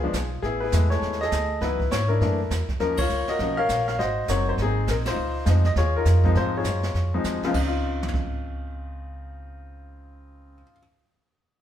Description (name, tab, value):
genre	jazz piano trio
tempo	202 BPM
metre	4/4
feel	swing 61% on 8ths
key	Db major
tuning	A4 = 440 Hz
part	clear upright piano	melody	0.0-10.8 s	Db2 to F5	-25 LUFS	left 2 dB	none
part	upright bass	bass	0.0-10.6 s	Gb1 to Ab2	-25 LUFS	equal	none
part	jazz brush drum kit	drums	0.1-8.2 s	brushed snare drum, crash cymbal, hi-hat, kick drum, ride cymbal, snare drum, toms	-32 LUFS	right 2 dB	none
room	wet stone room reverb, RT60 1.0 s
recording	band playing live in one room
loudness	-21 LUFS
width	side -10 dB against mid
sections	0.0-7.5 A section; 7.5-9.9 B section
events	band accent 3.0, 5.0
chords	0.4 Amaj9#11; 1.6 Dbm11; 2.2 Gb7alt; 2.8 Cbmaj9#11; 4.0 Ab9; 5.2 Dbmaj9